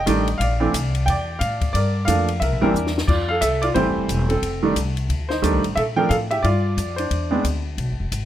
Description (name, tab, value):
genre	jazz piano trio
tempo	179 BPM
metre	4/4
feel	swing 62% on 8ths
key	F major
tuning	A4 = 440 Hz
part	clear baby grand piano	melody	0.0-7.4 s	Eb3 to G5	-21 LUFS	right 1 dB	plate reverb
part	upright bass	bass	0.0-8.3 s	E1 to Bb2	-23 LUFS	left 1 dB	none
part	compact cocktail drum kit	drums	0.1-8.2 s	crash cymbal, hi-hat, kick drum, ride cymbal, snare drum	-28 LUFS	left 3 dB	none
room	light reverb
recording	close, detailed microphones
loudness	-18 LUFS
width	side -12 dB against mid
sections	0.0-3.1 A section; 3.1-8.3 B section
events	drum fill 2.7-3.1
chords	0.4 Bbmaj9#11; 1.7 Gm7; 2.4 C7; 3.1 Fmaj7; 4.4 F13; 5.8 Bbmaj7; 7.1 E7b13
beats	0.07 | 0.40 0.74 1.07 1.41 | 1.74 2.08 2.41 2.75 | 3.08 3.42 3.75 4.09 | 4.42 4.76 5.09 5.43 | 5.76 6.10 6.43 6.77 | 7.10 7.44 7.77 8.11